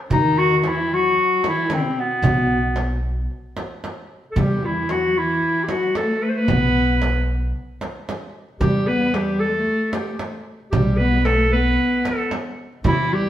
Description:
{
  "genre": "Arabic maqam ensemble",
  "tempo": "113 BPM",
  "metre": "4/4",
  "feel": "straight",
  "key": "E maqam nahawand",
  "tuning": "A4 = 440 Hz",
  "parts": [
    { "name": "bright clarinet", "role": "melody", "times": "0.1-13.3 s", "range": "B3 to C5", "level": "-20 LUFS", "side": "equal", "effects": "none" },
    { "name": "warm cello", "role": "second line", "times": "0.1-13.3 s", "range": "B2 to B3", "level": "-24 LUFS", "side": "left 1 dB", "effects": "none" },
    { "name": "upright bass", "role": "bass", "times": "0.1-13.3 s", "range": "B1 to E2", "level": "-23 LUFS", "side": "equal", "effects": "none" },
    { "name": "darbuka", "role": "percussion", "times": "0.1-13.3 s", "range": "none", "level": "-29 LUFS", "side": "right 1 dB", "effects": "none" },
    { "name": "frame drum", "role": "percussion", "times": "0.1-13.0 s", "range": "none", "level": "-27 LUFS", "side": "right 2 dB", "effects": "none" }
  ],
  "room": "wet stone room reverb, RT60 1.2 s",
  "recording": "band playing live in one room",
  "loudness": "-18 LUFS",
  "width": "side -12 dB against mid",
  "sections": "0.1-13.3 A section",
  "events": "none",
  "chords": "none"
}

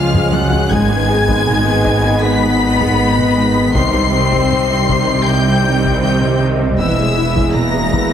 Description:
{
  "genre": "cinematic, hybrid orchestral and electronic film score",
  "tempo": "79 BPM",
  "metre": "4/4",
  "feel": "straight",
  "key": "unclear",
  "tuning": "A4 = 441 Hz",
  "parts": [
    { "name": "rich symphonic violin section", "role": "melody", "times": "0.0-8.1 s", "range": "E6 to C7", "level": "-21 LUFS", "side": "left 3 dB", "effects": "none" },
    { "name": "warm symphonic violin section", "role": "second line", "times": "0.0-8.1 s", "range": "E5 to C6", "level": "-22 LUFS", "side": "left 4 dB", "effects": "none" },
    { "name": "warm studio viola section", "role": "accompaniment", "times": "0.0-8.1 s", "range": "Eb3 to G#4", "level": "-23 LUFS", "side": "equal", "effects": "none" },
    { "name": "bright trombone section", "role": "sustained chords", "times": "0.0-8.1 s", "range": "C#3 to B3", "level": "-24 LUFS", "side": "right 2 dB", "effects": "none" },
    { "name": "mellow French horn section", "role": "sustained chords", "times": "0.0-8.1 s", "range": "E3 to C4", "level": "-20 LUFS", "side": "left 4 dB", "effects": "none" },
    { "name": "warbly tape-like pad", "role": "sustained chords", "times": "0.0-8.1 s", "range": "B2 to G#5", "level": "-22 LUFS", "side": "equal", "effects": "chorus, built-in reverb, phaser" },
    { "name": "tight sequenced synth", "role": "arpeggios", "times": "0.0-8.0 s", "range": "C3 to G#4", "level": "-26 LUFS", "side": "left 2 dB", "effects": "none" },
    { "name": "phased detuned saw bass", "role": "bass", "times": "0.0-8.1 s", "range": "E1 to C#2", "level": "-24 LUFS", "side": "equal", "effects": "phaser" },
    { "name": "rich symphonic double bass section", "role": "bass", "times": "0.0-8.1 s", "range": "E1 to C#2", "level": "-21 LUFS", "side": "right 3 dB", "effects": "none" },
    { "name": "warm symphonic cello section", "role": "bass", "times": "0.0-8.1 s", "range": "C#2 to C3", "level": "-20 LUFS", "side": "right 3 dB", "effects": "none" },
    { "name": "taiko ensemble", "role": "drums", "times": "0.1-8.1 s", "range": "none", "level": "-23 LUFS", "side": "equal", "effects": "none" }
  ],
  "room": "wet concert hall reverb, RT60 2.2 s",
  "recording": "heavily compressed radio sound",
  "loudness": "-12 LUFS",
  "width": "side -9 dB against mid",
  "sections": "0.0-8.1 A section",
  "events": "drum fill 0.0-0.7",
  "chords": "0.0 C#; 0.7 G#m; 3.7 Cm; 6.8 E"
}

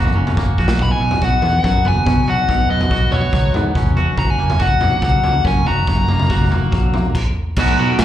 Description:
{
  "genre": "indie rock",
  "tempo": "142 BPM",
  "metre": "4/4",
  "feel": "straight",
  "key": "unclear",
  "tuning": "A4 = 441 Hz",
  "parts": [
    { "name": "smooth overdriven lead guitar", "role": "melody", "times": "0.0-8.0 s", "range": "C#5 to B5", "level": "-21 LUFS", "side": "left 3 dB", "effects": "slapback echo, tape echo" },
    { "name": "twangy electric guitar", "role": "riff", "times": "0.0-8.0 s", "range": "F#2 to F#4", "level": "-21 LUFS", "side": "right 1 dB", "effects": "slapback echo" },
    { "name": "picked electric bass", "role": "bass", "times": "0.0-8.0 s", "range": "E1 to B2", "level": "-18 LUFS", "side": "equal", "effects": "none" },
    { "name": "raw garage drum kit", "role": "drums", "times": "0.0-8.0 s", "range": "crash cymbal, kick drum, ride cymbal, snare drum, toms", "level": "-19 LUFS", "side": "equal", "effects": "none" }
  ],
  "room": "little or no reverb",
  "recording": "live gig heard through the venue's PA, club reverb",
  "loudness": "-14 LUFS",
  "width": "side -12 dB against mid",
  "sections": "0.8-7.6 A section",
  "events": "drum fill 0.4-0.8; stop 7.1-7.6",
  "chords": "0.0 F#; 0.8 Bsus2; 4.2 F#"
}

